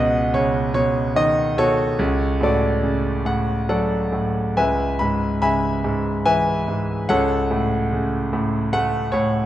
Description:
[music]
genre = classical, lyrical solo piano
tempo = 68-76 BPM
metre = 3/4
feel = rubato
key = C# minor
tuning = A4 = 437 Hz
[part]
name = bright concert grand piano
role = solo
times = 0.0-9.5 s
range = C#2 to B5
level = -18 LUFS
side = equal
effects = none
[sound]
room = light reverb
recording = dark, warm production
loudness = -18 LUFS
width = side -13 dB against mid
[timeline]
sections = 0.0-9.5 A section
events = none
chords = 0.0 Badd9/C#; 2.0 Dmaj7/C#; 4.6 C#m7; 7.1 F#m/C#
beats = 0.33 1.15 | 1.99 2.83 3.68 | 4.56 5.41 6.25 | 7.09 7.92 8.72

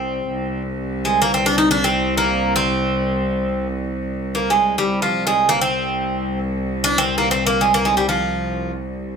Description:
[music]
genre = Turkish makam ensemble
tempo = free time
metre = none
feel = none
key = C makam ussak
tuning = A4 = 440 Hz
[part]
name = Greek bouzouki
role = melody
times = 0.0-8.7 s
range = F3 to Eb4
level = -18 LUFS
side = right 1 dB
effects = none
[part]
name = bright studio cello section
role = drone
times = 0.0-9.2 s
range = C2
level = -23 LUFS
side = equal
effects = none
[sound]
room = moderate studio reverb, RT60 0.6 s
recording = close, detailed microphones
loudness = -17 LUFS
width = side -6 dB against mid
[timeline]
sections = 0.0-9.2 A section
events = none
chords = none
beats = free time

